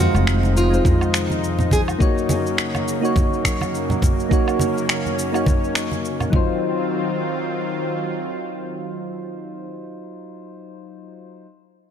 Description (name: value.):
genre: sunset chillout.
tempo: 104 BPM.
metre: 4/4.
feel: swing 57% on 16ths.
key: Eb dorian.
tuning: A4 = 440 Hz.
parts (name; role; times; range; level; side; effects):
nylon-string guitar; melody; 0.0-1.8 s; F4 to Ab4; -25 LUFS; right 1 dB; tape echo.
soft electric-piano-like synth keys; accompaniment; 0.0-11.4 s; Gb3 to F5; -24 LUFS; moving between left 6 dB and right 5 dB; chorus, auto-pan, ping-pong delay.
lush unison pad; sustained chords; 0.0-9.7 s; Gb2 to F4; -27 LUFS; equal; chorus.
upright bass; bass; 0.0-1.9 s; F1 to F2; -19 LUFS; equal; tube saturation.
electronic woodblock, cabasa and finger snaps; drums; 0.1-6.3 s; none; -26 LUFS; equal; none.
congas; percussion; 0.4-6.5 s; none; -25 LUFS; right 2 dB; none.
electronic kick drum; drums; 0.8-6.5 s; none; -19 LUFS; equal; none.
room: light reverb.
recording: none.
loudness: -18 LUFS.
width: side -8 dB against mid.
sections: 0.0-6.6 A section; 6.6-8.9 B section.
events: none.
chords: 0.0 Fm7; 2.0 Ebm7/Gb; 6.3 Ebm69.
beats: 0.27 0.85 1.42 | 2.00 2.58 3.15 3.73 | 4.31 4.88 5.46 6.04 | 6.62 7.19 7.77 8.35.